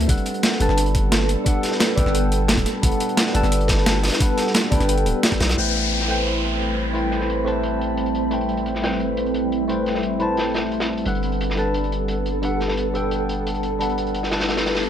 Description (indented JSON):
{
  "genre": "liquid drum and bass",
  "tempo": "175 BPM",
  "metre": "4/4",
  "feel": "straight",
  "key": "unclear",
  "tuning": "A4 = 440 Hz",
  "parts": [
    { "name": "tine electric piano", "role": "accompaniment", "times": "0.0-14.9 s", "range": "G3 to A5", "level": "-23 LUFS", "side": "left 1 dB", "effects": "phaser, dub echo" },
    { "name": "ethereal airy pad", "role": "sustained chords", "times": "0.0-14.9 s", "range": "G3 to B5", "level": "-27 LUFS", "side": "right 1 dB", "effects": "ensemble chorus, built-in reverb, sidechain pumping" },
    { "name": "long sustained 808-style bass", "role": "bass", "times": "0.0-14.9 s", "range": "D1 to B1", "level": "-25 LUFS", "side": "equal", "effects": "none" },
    { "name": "crunchy breakbeat drum kit", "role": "drums", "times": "0.0-14.9 s", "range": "hi-hat, snare drum", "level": "-27 LUFS", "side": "equal", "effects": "high-pass filter on hats, low-pass filter on hats, high-pass filter on snare, low-pass filter on snare, high-pass filter on room, low-pass filter on room" },
    { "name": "breakbeat sampler-style drum kit", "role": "drums", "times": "0.1-5.5 s", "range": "hi-hat, snare drum", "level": "-23 LUFS", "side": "right 1 dB", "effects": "overdrive" },
    { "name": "electronic kick drum", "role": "drums", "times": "0.1-5.4 s", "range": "none", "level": "-21 LUFS", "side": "equal", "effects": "none" },
    { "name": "downlifter and riser", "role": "sound effects", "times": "5.6-8.3, 14.6-14.9 s", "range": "none", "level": "-27 LUFS", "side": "left 2 dB", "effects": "none" }
  ],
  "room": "light reverb",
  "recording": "none",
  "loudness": "-18 LUFS",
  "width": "side -9 dB against mid",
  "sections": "0.0-5.6 A section; 5.6-14.9 B section",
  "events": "none",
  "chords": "0.1 Gmaj9; 5.6 Am9; 11.1 Gmaj9"
}